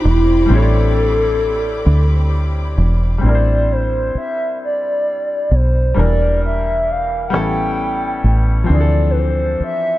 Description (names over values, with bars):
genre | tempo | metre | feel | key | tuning
slow six-eight R&B | 44 BPM (dotted quarters) | 6/8 | straight | A minor | A4 = 440 Hz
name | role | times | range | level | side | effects
hollow clarinet-like synth lead | melody | 0.0-10.0 s | D#4 to G5 | -19 LUFS | equal | chorus, slapback echo
clear grand piano | accompaniment | 0.0-10.0 s | E3 to E5 | -23 LUFS | left 4 dB | none
warm studio string section | sustained chords | 0.0-3.2 s | C4 to D6 | -29 LUFS | left 3 dB | none
deep dub fingered electric bass | bass | 0.1-9.6 s | E1 to D2 | -15 LUFS | equal | none
room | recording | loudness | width
small room ambience | dark, warm production | -14 LUFS | side -16 dB against mid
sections
0.0-3.2 A section; 3.2-10.0 B section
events
none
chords
0.0 Am11; 6.0 Em7b5; 7.3 A7; 8.7 Dm7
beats
| 0.50 1.87 | 3.23 4.59 | 5.96 7.32 | 8.69